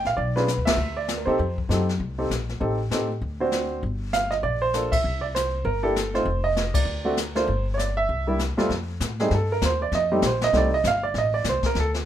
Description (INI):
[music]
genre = jazz piano trio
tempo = 197 BPM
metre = 4/4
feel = swing 61% on 8ths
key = F mixolydian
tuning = A4 = 440 Hz
[part]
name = warm baby grand piano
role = melody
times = 0.0-11.9 s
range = F2 to F5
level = -23 LUFS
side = right 2 dB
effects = none
[part]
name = upright bass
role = bass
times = 0.0-12.0 s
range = F1 to C3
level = -27 LUFS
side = left 1 dB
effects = none
[part]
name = jazz brush drum kit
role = drums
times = 0.1-12.1 s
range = brushed snare drum, hi-hat, kick drum, ride cymbal, snare drum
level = -29 LUFS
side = left 3 dB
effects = none
[sound]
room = light reverb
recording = minimal, uncompressed stereo recording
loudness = -22 LUFS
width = side -11 dB against mid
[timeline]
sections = 0.0-8.7 A section; 8.7-12.1 B section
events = band accent 0.6, 4.9, 6.7; grand piano solo 8.7-12.1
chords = 0.2 Bm; 1.4 F9; 2.6 Am7b5; 3.2 D7; 3.8 Gm7; 5.0 C7; 6.3 Dbmaj9/F; 6.9 D7(no3); 7.5 Csus2/G; 8.1 C; 8.7 F9